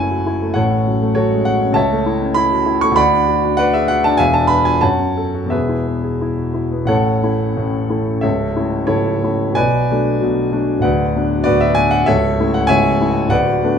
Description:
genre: classical, romantic character piece for solo piano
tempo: 84-102 BPM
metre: 2/4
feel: rubato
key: A major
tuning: A4 = 441 Hz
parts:
  - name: warm concert grand piano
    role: solo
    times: 0.0-13.8 s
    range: C#1 to C#6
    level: -14 LUFS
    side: equal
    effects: none
room: light reverb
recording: close, detailed microphones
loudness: -14 LUFS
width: side -7 dB against mid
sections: 0.0-6.9 A section; 6.9-13.8 B section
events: none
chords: 0.0 F#m7; 0.6 F#m/A; 1.8 A/C#; 3.0 Bm/D; 4.2 E5; 4.8 F#m; 5.5 E; 6.9 A; 8.2 A/C#; 9.6 Bm7; 10.8 Bm/D; 12.1 A/C#

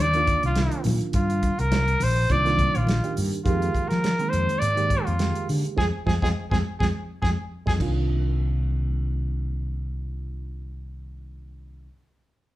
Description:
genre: electric jazz fusion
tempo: 104 BPM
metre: 4/4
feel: swing 54% on 16ths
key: C minor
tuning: A4 = 439 Hz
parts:
  - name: clear trumpet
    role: melody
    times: 0.0-7.7 s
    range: F4 to D5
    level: -26 LUFS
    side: equal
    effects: none
  - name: barky reed electric piano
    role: accompaniment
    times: 0.0-11.9 s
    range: Eb3 to G4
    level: -31 LUFS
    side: right 5 dB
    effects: phaser
  - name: mellow fretless electric bass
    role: bass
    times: 0.0-11.9 s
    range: Bb1 to F3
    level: -25 LUFS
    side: equal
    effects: none
  - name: congas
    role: percussion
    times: 0.0-3.0 s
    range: none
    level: -31 LUFS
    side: left 2 dB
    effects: none
  - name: damped 70s drum kit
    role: drums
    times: 0.1-8.0 s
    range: crash cymbal, hi-hat, kick drum, snare drum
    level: -28 LUFS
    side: equal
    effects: none
room: moderate large studio reverb, RT60 0.9 s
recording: band playing live in one room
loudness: -21 LUFS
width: side -15 dB against mid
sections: 0.0-8.1 A section; 8.1-10.4 B section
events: band accent 5.8-8.1; drum fill 6.9-8.1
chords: 0.0 Cm11; 3.5 Fm11; 7.8 Cm11

